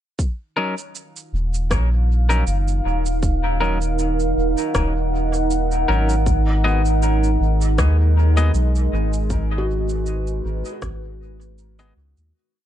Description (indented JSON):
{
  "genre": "ambient dub",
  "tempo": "79 BPM",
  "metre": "4/4",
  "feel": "swing 55% on 16ths",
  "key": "Eb minor",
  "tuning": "A4 = 444 Hz",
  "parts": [
    { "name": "deep dark ambient pad", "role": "sustained chords", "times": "1.7-12.3 s", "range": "Ab3 to Gb5", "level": "-24 LUFS", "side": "right 2 dB", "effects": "chorus, built-in reverb" },
    { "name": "electronic cabasa and rim click", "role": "drums", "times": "0.2-12.3 s", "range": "none", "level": "-30 LUFS", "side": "equal", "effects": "dub echo" },
    { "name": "electronic kick drum", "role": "drums", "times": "0.2-11.0 s", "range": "none", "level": "-23 LUFS", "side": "equal", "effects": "none" },
    { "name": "semi-hollow electric guitar", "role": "stabs", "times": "0.6-11.9 s", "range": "Gb3 to Eb5", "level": "-27 LUFS", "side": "left 2 dB", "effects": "dub echo" },
    { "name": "soft dub sub bass", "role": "bass", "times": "1.3-12.3 s", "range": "Eb1 to Eb2", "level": "-19 LUFS", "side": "equal", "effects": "tube saturation" },
    { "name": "felt-muted upright piano", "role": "arpeggios", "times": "9.6-12.4 s", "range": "Gb4", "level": "-32 LUFS", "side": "left 1 dB", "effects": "dub echo" }
  ],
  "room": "little or no reverb",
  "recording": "echo-heavy mix, nothing above 10.6 kHz",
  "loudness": "-17 LUFS",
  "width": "side -11 dB against mid",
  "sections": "0.2-12.3 groove",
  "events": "fade-out 8.3-12.3",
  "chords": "0.2 Ebm; 6.3 Abm7"
}